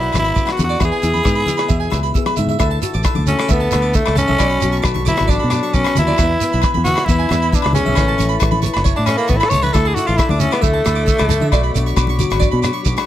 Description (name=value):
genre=highlife guitar band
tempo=134 BPM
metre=4/4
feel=straight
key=unclear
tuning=A4 = 440 Hz
part: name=raspy tenor saxophone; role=melody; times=0.0-12.0 s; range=A3 to C#5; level=-19 LUFS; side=equal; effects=none
part: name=fingerpicked old ladder-braced acoustic guitar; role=accompaniment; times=0.0-13.1 s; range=F#2 to A4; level=-25 LUFS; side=left 5 dB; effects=none
part: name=harpsichord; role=arpeggios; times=0.0-13.0 s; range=C#5 to E6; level=-24 LUFS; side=right 7 dB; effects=slapback echo
part: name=fingered electric bass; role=bass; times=0.0-12.9 s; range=F#1 to D3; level=-19 LUFS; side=equal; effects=none
part: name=agogo bells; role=percussion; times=0.1-13.1 s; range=none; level=-27 LUFS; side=left 16 dB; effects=none
part: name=shekere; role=percussion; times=0.1-13.0 s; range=none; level=-25 LUFS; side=right 6 dB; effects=none
part: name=warm soul drum kit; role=drums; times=0.2-13.1 s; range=hi-hat, kick drum, rim click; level=-20 LUFS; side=equal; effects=none
part: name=congas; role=percussion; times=0.2-12.5 s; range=none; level=-23 LUFS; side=left 2 dB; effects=none
part: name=combo organ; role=sustained chords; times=2.6-13.1 s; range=A4 to B5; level=-32 LUFS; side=left 2 dB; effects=none
room=small room reverb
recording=none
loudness=-14 LUFS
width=side -12 dB against mid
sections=0.0-2.6 A section; 2.6-13.1 B section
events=drum fill 2.3-2.6; tenor saxophone solo 2.6-13.1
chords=0.0 Bm; 0.8 E; 2.6 Dsus2; 4.4 Bmadd9; 6.2 E; 8.0 Aadd9; 9.8 Dsus2; 11.5 Bmadd9